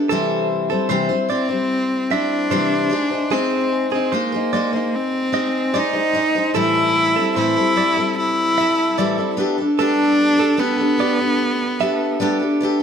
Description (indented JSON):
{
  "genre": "acoustic pop",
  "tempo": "74 BPM",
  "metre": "4/4",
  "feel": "straight",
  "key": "C major",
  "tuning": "A4 = 440 Hz",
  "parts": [
    { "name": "picked steel-string acoustic guitar", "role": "accompaniment", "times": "0.0-12.8 s", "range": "A2 to C5", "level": "-20 LUFS", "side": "left 2 dB", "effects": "none" },
    { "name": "direct-recorded clean electric guitar", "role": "arpeggios", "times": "0.1-12.8 s", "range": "Ab4 to E5", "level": "-25 LUFS", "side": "right 7 dB", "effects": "none" },
    { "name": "warm cello", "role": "melody", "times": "1.3-12.6 s", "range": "Bb3 to E4", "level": "-19 LUFS", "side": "equal", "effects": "none" }
  ],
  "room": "moderate plate reverb, RT60 3.5 s",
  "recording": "none",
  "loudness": "-16 LUFS",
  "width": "side -7 dB against mid",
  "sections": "0.0-12.8 A section",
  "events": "none",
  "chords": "0.1 C; 2.9 Ab; 6.6 Am7; 9.4 Gadd9"
}